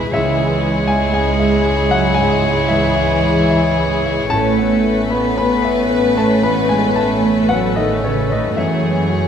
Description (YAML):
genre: cinematic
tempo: 57 BPM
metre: 4/4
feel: rubato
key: C# minor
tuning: A4 = 438 Hz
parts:
  - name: warm symphonic violin section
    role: melody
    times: 0.0-9.3 s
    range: G#4 to B4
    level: -23 LUFS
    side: left 6 dB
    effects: none
  - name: warm clarinet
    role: second line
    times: 0.0-9.3 s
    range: A4 to C#5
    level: -23 LUFS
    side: equal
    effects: none
  - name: warm studio violin section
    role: second line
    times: 0.0-9.3 s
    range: C#4 to E4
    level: -24 LUFS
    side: left 1 dB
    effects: none
  - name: dark symphonic viola section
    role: accompaniment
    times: 0.0-9.3 s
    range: G#3 to A3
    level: -24 LUFS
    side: right 2 dB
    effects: none
  - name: warm grand piano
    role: accompaniment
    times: 0.0-9.3 s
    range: C#2 to B5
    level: -21 LUFS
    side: left 2 dB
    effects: none
  - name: warm symphonic double bass section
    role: bass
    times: 0.0-9.3 s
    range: A1 to F#2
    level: -22 LUFS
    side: right 4 dB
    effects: none
  - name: mellow French horn section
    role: sustained chords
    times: 0.1-9.3 s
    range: C#3 to B3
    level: -22 LUFS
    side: left 6 dB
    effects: none
  - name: dark chamber cello section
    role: bass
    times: 0.1-9.3 s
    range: C#3 to B3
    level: -21 LUFS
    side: right 4 dB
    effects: none
  - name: timpani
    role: percussion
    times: 0.1-1.6 s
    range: C#3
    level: -28 LUFS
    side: left 1 dB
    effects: none
room: moderate scoring stage reverb, RT60 1.6 s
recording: close, detailed microphones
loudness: -13 LUFS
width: side -8 dB against mid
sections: 0.0-9.3 A section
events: none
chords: 0.1 C#m; 4.3 Aadd9; 8.6 F#sus2